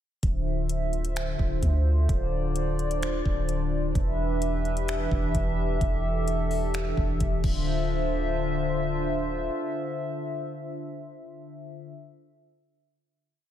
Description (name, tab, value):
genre	hip hop, atmospheric cloud-rap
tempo	129 BPM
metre	4/4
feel	half-time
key	D dorian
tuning	A4 = 439 Hz
part	hollow soft pad	sustained chords	0.2-11.9 s	D3 to E5	-29 LUFS	left 1 dB	chorus
part	soft 808-style bass	bass	0.2-9.5 s	D1 to D2	-28 LUFS	equal	none
part	smooth R&B drum kit	drums	0.2-7.5 s	crash cymbal, finger snaps, hi-hat, kick drum	-30 LUFS	equal	none
room	moderate lush hall reverb, RT60 1.8 s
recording	dreamy mix soaked in reverb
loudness	-25 LUFS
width	side -11 dB against mid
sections	0.2-7.7 verse; 7.7-11.4 final hit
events	none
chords	0.2 Dm7; 4.0 Em7; 7.4 Dm7